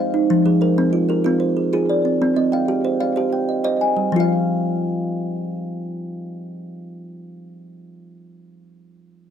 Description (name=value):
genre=southern african traditional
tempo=126 BPM (dotted quarters)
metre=12/8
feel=straight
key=unclear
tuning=A4 = 437 Hz
part: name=kalimba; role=arpeggios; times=0.0-8.1 s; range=F3 to Ab5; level=-20 LUFS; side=left 4 dB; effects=slapback echo
part: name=kalimba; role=arpeggios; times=0.0-8.1 s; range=F3 to G5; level=-22 LUFS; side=right 8 dB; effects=none
room=little or no reverb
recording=dry, close 1970s-style studio recording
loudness=-17 LUFS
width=side -8 dB against mid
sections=0.0-4.1 A section; 4.1-7.9 B section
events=none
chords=0.3 Fm; 2.2 Cm; 4.1 N.C.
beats=| 0.29 0.77 1.25 1.73 | 2.20 2.68 3.16 3.63 | 4.11 4.59 5.07 5.54 | 6.02 6.50 6.98 7.45